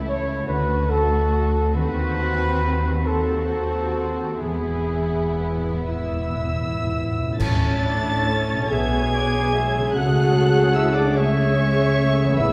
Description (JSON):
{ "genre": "classical, slow romantic movement for symphony orchestra", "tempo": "38-50 BPM (dotted quarters)", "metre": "6/8", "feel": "rubato", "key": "A major", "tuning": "A4 = 438 Hz", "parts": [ { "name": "muted studio violin section", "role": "melody", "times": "0.0-12.5 s", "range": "A5 to A6", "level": "-34 LUFS", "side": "equal", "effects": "none" }, { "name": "muted studio violin section", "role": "second line", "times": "0.0-12.5 s", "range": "E4 to E5", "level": "-34 LUFS", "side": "equal", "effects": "none" }, { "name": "muted studio viola section", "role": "accompaniment", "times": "0.0-12.5 s", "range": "G#3 to G#4", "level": "-30 LUFS", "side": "equal", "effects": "none" }, { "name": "concert harp", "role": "arpeggios", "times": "0.0-12.5 s", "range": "E2 to E5", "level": "-33 LUFS", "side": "equal", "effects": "none" }, { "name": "mellow trumpet section", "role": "stabs", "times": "0.0-5.9 s", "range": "G#4 to C#5", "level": "-27 LUFS", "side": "equal", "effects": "none" }, { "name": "muted studio cello section", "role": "bass", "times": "0.0-12.5 s", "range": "C#2 to C#3", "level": "-29 LUFS", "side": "equal", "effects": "none" }, { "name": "muted studio double bass section", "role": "bass", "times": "0.0-12.5 s", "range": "E1 to D#2", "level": "-29 LUFS", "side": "equal", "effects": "none" }, { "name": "timpani", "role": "percussion", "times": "4.4-12.5 s", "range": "E2 to A2", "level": "-32 LUFS", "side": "equal", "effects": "none" }, { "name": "concert flute", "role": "second line", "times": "5.9-12.5 s", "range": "C#5 to A5", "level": "-30 LUFS", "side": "equal", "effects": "none" }, { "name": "warm French horn section", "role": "sustained chords", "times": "5.9-12.5 s", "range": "C#4 to A4", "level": "-29 LUFS", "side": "equal", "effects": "none" }, { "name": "clash cymbals and concert bass drum", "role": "percussion", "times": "7.4-9.1 s", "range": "none", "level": "-30 LUFS", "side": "equal", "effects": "none" }, { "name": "bright clarinet", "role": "second line", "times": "8.7-12.5 s", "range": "D5 to F#5", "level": "-31 LUFS", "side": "equal", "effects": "none" } ], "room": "wet recital hall reverb, RT60 1.4 s", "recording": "heard from further back in the room", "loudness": "-21 LUFS", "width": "mono", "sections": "0.0-7.4 A section; 7.4-12.5 B section", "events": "timpani fill 4.4-7.4; band accent 7.4-8.3", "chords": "0.5 D; 1.7 D#dim7; 4.4 E; 7.4 A; 8.7 G#dim/B; 10.0 A/C#", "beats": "0.49 | 1.75 3.05 | 4.41 5.89 | 7.41 8.71 | 9.96 11.17 | 12.40" }